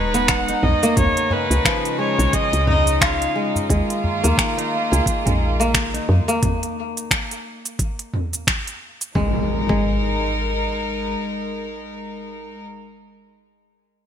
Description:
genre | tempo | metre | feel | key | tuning
organic downtempo | 88 BPM | 4/4 | swing 58% on 16ths | G# dorian | A4 = 435 Hz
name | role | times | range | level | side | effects
rich kamancheh | melody | 0.0-3.5 s | B4 to F#5 | -23 LUFS | equal | ping-pong delay
bright chamber string section | sustained chords | 0.0-12.6 s | C#3 to A#5 | -26 LUFS | equal | sidechain pumping
kora | arpeggios | 0.0-11.8 s | E#3 to G#4 | -24 LUFS | left 1 dB | ping-pong delay
woody FM bass | bass | 0.0-11.2 s | D#1 to F#2 | -21 LUFS | equal | sidechain pumping
organic electronic drum kit | drums | 0.1-9.1 s | finger snaps, hi-hat, shaker, toms | -22 LUFS | right 1 dB | overdrive, gated reverb
electronic kick drum | drums | 0.3-9.9 s | none | -24 LUFS | equal | overdrive
udu | percussion | 1.3-4.2 s | none | -26 LUFS | left 1 dB | none
impact | sound effects | 9.2-12.8 s | none | -28 LUFS | equal | none
room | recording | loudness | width
moderate lush hall reverb, RT60 2.2 s | bright 1980s-style digital production | -18 LUFS | side -9 dB against mid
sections
0.0-9.2 A section; 9.2-11.9 B section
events
none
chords
0.0 G#m7; 1.0 C#7; 3.7 D#5; 6.4 N.C.; 9.2 G#5

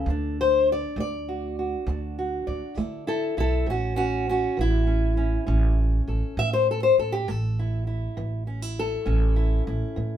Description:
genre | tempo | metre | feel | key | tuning
acoustic country blues, solo or duo | 67 BPM (dotted quarters) | 12/8 | straight | A major | A4 = 440 Hz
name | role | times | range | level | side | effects
fingerpicked steel-string acoustic guitar | melody | 0.0-10.2 s | A2 to E5 | -25 LUFS | left 2 dB | none
upright bass | bass | 0.0-10.2 s | A1 to D3 | -26 LUFS | right 1 dB | none
room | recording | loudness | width
moderate studio ambience, RT60 0.5 s | band playing live in one room | -22 LUFS | side -10 dB against mid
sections
0.0-10.2 A section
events
steel-string acoustic guitar solo 0.0-10.2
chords
0.1 D; 3.7 A

